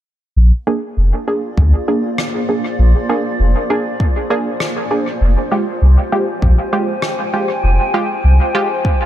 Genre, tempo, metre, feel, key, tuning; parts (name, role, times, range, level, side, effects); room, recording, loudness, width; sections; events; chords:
ambient dub; 99 BPM; 4/4; swing 55% on 16ths; Bb mixolydian; A4 = 442 Hz
granular cloud pad; sustained chords; 1.3-9.1 s; Bb3 to Ab5; -21 LUFS; left 1 dB; built-in reverb
warm sub bass; bass; 0.4-8.4 s; F1 to D2; -10 LUFS; equal
filtered dub chord stab; stabs; 0.7-8.7 s; Ab3 to Ab4; -19 LUFS; right 2 dB; chorus, dub echo
electronic kick drum; drums; 1.6-9.0 s; -16 LUFS; equal
rim click; drums; 2.2-7.2 s; -27 LUFS; left 2 dB; dub echo
little or no reverb; -13 LUFS; side -12 dB against mid
0.4-9.1 A section
0.4 Bb7; 5.2 Fmadd9